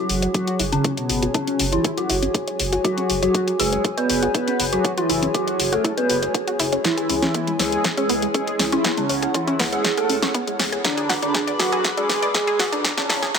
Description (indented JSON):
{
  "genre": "melodic techno",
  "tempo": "120 BPM",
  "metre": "4/4",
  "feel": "straight",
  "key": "unclear",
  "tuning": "A4 = 440 Hz",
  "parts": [
    { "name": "mellow synth brass", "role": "melody", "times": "0.0-13.4 s", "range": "B2 to B4", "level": "-25 LUFS", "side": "right 1 dB", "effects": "chorus, sidechain pumping, tape echo" },
    { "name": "dark detuned synth bell", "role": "second line", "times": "0.0-13.4 s", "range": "C#4 to B4", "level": "-26 LUFS", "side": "equal", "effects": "chorus, phaser, sidechain pumping, digital delay" },
    { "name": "dark analog pad", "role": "sustained chords", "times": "0.0-13.4 s", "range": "E4 to D6", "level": "-27 LUFS", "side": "left 2 dB", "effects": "chorus, sidechain pumping" },
    { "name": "wide unison pluck", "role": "arpeggios", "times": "0.0-13.4 s", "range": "G#3 to D5", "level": "-27 LUFS", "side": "right 1 dB", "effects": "sidechain pumping, digital delay" },
    { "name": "round analog bass", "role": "bass", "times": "0.1-13.3 s", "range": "F#1 to C#2", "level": "-31 LUFS", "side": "equal", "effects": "sidechain pumping" },
    { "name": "house drum kit", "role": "drums", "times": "0.1-13.4 s", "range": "hi-hat, snare drum", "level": "-24 LUFS", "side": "left 1 dB", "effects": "sidechain pumping on hats" },
    { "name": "electronic kick drum", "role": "drums", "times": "0.3-13.4 s", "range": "none", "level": "-25 LUFS", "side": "equal", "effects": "high-pass filter on kick" }
  ],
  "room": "moderate lush hall reverb, RT60 1.7 s",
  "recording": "high-pass filter",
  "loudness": "-18 LUFS",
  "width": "side -6 dB against mid",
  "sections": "0.0-13.4 A section",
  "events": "build-up 0.0-13.4; filter sweep on synth arpeggio sound 0.0-13.4; drum fill 6.8-13.4",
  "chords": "0.0 F#sus2; 6.8 C#m; 10.8 G#dim"
}